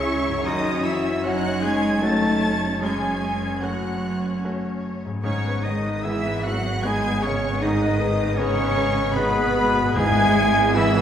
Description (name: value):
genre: cinematic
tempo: 76 BPM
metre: 3/4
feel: rubato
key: unclear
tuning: A4 = 438 Hz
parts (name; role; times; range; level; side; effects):
- rich studio violin section; melody; 0.0-11.0 s; B5 to A6; -30 LUFS; left 2 dB; none
- bright silver concert flute; second line; 0.0-11.0 s; B4 to A5; -31 LUFS; left 1 dB; none
- clear oboe; second line; 0.0-11.0 s; B4 to A5; -30 LUFS; right 1 dB; none
- warm clarinet; second line; 0.0-11.0 s; B3 to A4; -31 LUFS; left 1 dB; none
- warm studio violin section; second line; 0.0-11.0 s; B4 to A5; -30 LUFS; left 1 dB; none
- bright baby grand piano; accompaniment; 0.0-11.0 s; C#2 to G#4; -29 LUFS; left 1 dB; none
- warm studio viola section; accompaniment; 0.0-11.0 s; G#3 to E5; -30 LUFS; equal; none
- dark French horn section; sustained chords; 0.0-11.0 s; B3 to B4; -28 LUFS; left 1 dB; none
- rich studio cello section; bass; 0.0-11.0 s; B2 to A3; -28 LUFS; right 1 dB; none
- rich studio double bass section; bass; 0.0-11.0 s; F#1 to C#2; -28 LUFS; right 2 dB; none
- concert harp; arpeggios; 0.3-11.0 s; F#2 to F#4; -35 LUFS; left 2 dB; none
- timpani; percussion; 10.0-11.0 s; G#2; -28 LUFS; equal; none
room: wet recital hall reverb, RT60 1.6 s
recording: recorded in a church or concert hall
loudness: -20 LUFS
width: side -9 dB against mid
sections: 0.0-11.0 A section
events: none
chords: 0.5 F#m; 5.2 G#m; 10.0 E/G#